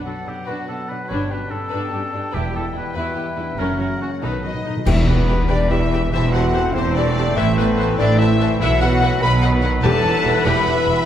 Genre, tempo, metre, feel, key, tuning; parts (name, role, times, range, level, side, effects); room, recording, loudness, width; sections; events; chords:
cinematic, heroic adventure film score; 97 BPM (dotted quarters); 6/8; straight; B minor, E minor from 4.9 s; A4 = 440 Hz
rich symphonic violin section; melody; 0.0-11.1 s; B4 to B5; -30 LUFS; left 4 dB
clear clarinet; second line; 0.0-11.1 s; B3 to B5; -30 LUFS; left 2 dB
dark symphonic violin section; second line; 0.0-11.1 s; C#4 to A5; -30 LUFS; left 3 dB
mellow hollow concert flute; second line; 0.0-11.1 s; B4 to B5; -29 LUFS; left 2 dB
rich studio viola section; accompaniment; 0.0-11.0 s; C#4 to C5; -29 LUFS; equal
bright trombone section; sustained chords; 0.0-11.1 s; B2 to A3; -28 LUFS; right 3 dB
mellow French horn section; sustained chords; 0.0-11.1 s; D3 to B4; -26 LUFS; left 3 dB
concert harp; arpeggios; 0.0-11.1 s; E2 to D6; -30 LUFS; left 9 dB
rich studio double bass section; bass; 0.0-11.0 s; E1 to B1; -22 LUFS; right 2 dB
warm oboe; second line; 0.1-4.6 s; F#4 to C#5; -29 LUFS; left 1 dB
clear symphonic cello section; bass; 0.1-10.9 s; E2 to B2; -25 LUFS; right 3 dB
timpani; percussion; 3.6-5.5, 9.8-10.4 s; E2 to B2; -26 LUFS; left 1 dB
mellow trumpet section; stabs; 4.9-11.0 s; C4 to B4; -26 LUFS; equal
clash cymbals and concert bass drum; percussion; 4.9-5.7 s; -23 LUFS; equal
moderate scoring stage reverb, RT60 1.7 s; -16 LUFS; side -10 dB against mid
0.0-4.9 A section; 4.9-11.1 B section
timpani fill 4.2-4.9; band accent 4.9-5.3
0.0 Bm; 1.1 G; 2.3 Em; 3.6 F#; 4.2 B7; 4.9 Em; 6.1 C6/E; 7.4 Amadd9; 8.6 Bsus4; 9.2 B; 9.8 Emadd9